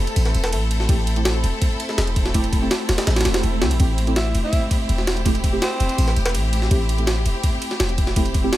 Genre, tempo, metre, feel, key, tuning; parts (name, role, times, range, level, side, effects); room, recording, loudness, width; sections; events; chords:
drum and bass, jungle; 165 BPM; 4/4; straight; A minor; A4 = 441 Hz
rich studio string section; sustained chords; 0.0-8.6 s; A3 to A4; -27 LUFS; left 1 dB; vintage 12-bit sampler grit
warm 808-style bass; bass; 0.0-8.5 s; E1 to D2; -21 LUFS; equal; tube saturation
jungle sampler-style drum kit; drums; 0.1-8.6 s; kick drum, ride cymbal, snare drum; -22 LUFS; equal; overdrive, small room reverb
growling tenor saxophone; melody; 0.4-0.6, 4.2-6.1 s; C4 to A4; -30 LUFS; equal; vintage 12-bit sampler grit, dub echo
deep mellow chord stab; stabs; 0.9-8.5 s; A3 to G4; -28 LUFS; right 2 dB; chorus, cassette tape, dub echo
swell; sound effects; 3.2-3.8 s; -30 LUFS; right 3 dB
digital ambience; -18 LUFS; side -14 dB against mid
0.0-8.6 A section
swell 3.2-3.8
0.0 Am7